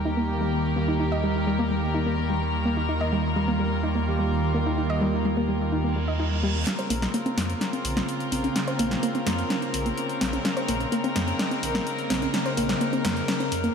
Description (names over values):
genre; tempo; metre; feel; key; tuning
melodic techno; 127 BPM; 4/4; straight; Bb dorian; A4 = 441 Hz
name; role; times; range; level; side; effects
rich chamber string section; sustained chords; 0.0-13.7 s; Db3 to Bb4; -29 LUFS; left 1 dB; none
swelling detuned saw bass; bass; 0.0-13.7 s; Bb1 to F2; -29 LUFS; equal; none
soft round pluck; arpeggios; 0.1-13.7 s; G3 to Eb5; -28 LUFS; equal; chorus, tape echo
analog synth brass; stabs; 0.3-13.5 s; Db3 to Bb4; -31 LUFS; right 2 dB; chorus, tape echo
reverse cymbal; sound effects; 5.9-6.7 s; none; -34 LUFS; right 5 dB; none
deep house drum kit; drums; 6.7-13.7 s; hi-hat, snare drum; -29 LUFS; equal; overdrive
room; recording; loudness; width
wet lush hall reverb, RT60 2.1 s; dreamy mix soaked in reverb; -23 LUFS; side -6 dB against mid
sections
0.0-6.7 A section; 6.7-13.7 B section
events
reverse cymbal 5.9-6.7; build-up 6.7-13.7; drum fill 6.7-13.7; filter sweep on synth arpeggio sound 6.7-13.7; filter sweep on analog polysynth 6.7-13.7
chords
0.0 Eb; 6.7 Bbmadd9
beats
0.05 0.53 | 1.00 1.47 1.94 2.42 | 2.89 3.36 3.83 4.31 | 4.78 5.25 5.72 6.20 | 6.67 7.14 7.61 8.09 | 8.56 9.03 9.50 9.97 | 10.45 10.92 11.39 11.87 | 12.34 12.81 13.28